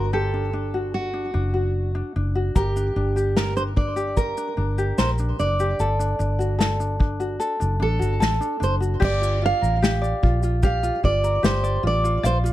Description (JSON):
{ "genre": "acoustic pop", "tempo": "74 BPM", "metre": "4/4", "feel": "straight", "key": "G minor from 9.0 s", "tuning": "A4 = 440 Hz", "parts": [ { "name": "fingerpicked steel-string acoustic guitar", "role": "melody", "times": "0.0-12.4 s", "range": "F#4 to F5", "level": "-26 LUFS", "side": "right 2 dB", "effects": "digital delay" }, { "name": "ukulele", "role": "accompaniment", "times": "0.0-12.5 s", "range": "D4 to F5", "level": "-27 LUFS", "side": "left 2 dB", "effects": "none" }, { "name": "vintage muted fingered electric bass", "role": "bass", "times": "0.0-12.5 s", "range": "F#1 to Bb1", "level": "-24 LUFS", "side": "equal", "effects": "none" }, { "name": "unplugged drum kit", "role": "drums", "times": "2.6-12.5 s", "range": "crash cymbal, kick drum, shaker, snare drum", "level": "-23 LUFS", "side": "left 1 dB", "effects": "none" } ], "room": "light reverb", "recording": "dark, warm production", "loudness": "-20 LUFS", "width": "side -14 dB against mid", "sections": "0.0-9.0 A section; 9.0-12.5 B section", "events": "none", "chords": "0.0 D/G; 2.6 Gm; 5.8 D/G; 9.0 Gm7" }